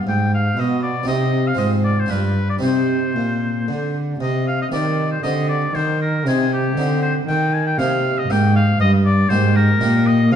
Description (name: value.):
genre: classical, baroque-style sonata movement with continuo.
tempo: 118 BPM.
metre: 3/4.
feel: straight.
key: C minor.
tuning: A4 = 440 Hz.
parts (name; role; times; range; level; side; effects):
harpsichord; accompaniment; 0.0-10.4 s; G2 to G4; -21 LUFS; equal; none.
dark cello; bass; 0.0-10.4 s; G2 to Eb3; -19 LUFS; equal; none.
clear oboe; melody; 0.1-10.4 s; G4 to Ab5; -22 LUFS; left 3 dB; none.
room: wet recital hall reverb, RT60 1.3 s.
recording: dark, warm production.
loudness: -16 LUFS.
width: side -8 dB against mid.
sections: 0.0-4.2 A section; 4.2-10.4 B section.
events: none.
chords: 0.0 G; 1.1 Cm; 1.6 Fm/Ab; 2.1 G7; 2.6 Cm; 7.3 Eb; 8.8 Eb/G.